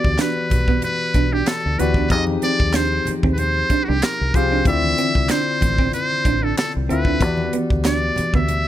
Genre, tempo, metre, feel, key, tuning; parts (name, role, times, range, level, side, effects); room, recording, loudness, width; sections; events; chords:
R&B, neo-soul; 94 BPM; 4/4; swing 54% on 16ths; E phrygian; A4 = 440 Hz
trumpet with metal mute; melody; 0.0-8.7 s; F#4 to E5; -22 LUFS; equal
barky tine electric piano; accompaniment; 0.0-8.7 s; D3 to F5; -24 LUFS; left 5 dB; overdrive
tight funk drum kit; drums; 0.0-8.6 s; handclaps, hi-hat, kick drum, snare drum; -21 LUFS; equal
deep dub fingered electric bass; bass; 0.1-8.7 s; A1 to F2; -22 LUFS; equal
vintage hollow-body jazz guitar; second line; 0.2-8.5 s; B3 to D4; -26 LUFS; right 10 dB
congas; percussion; 0.4-8.7 s; -32 LUFS; right 1 dB
little or no reverb; -16 LUFS; side -12 dB against mid
0.0-8.7 A section
0.0 Em9; 2.1 Fm9; 4.7 Dm9; 7.2 Em9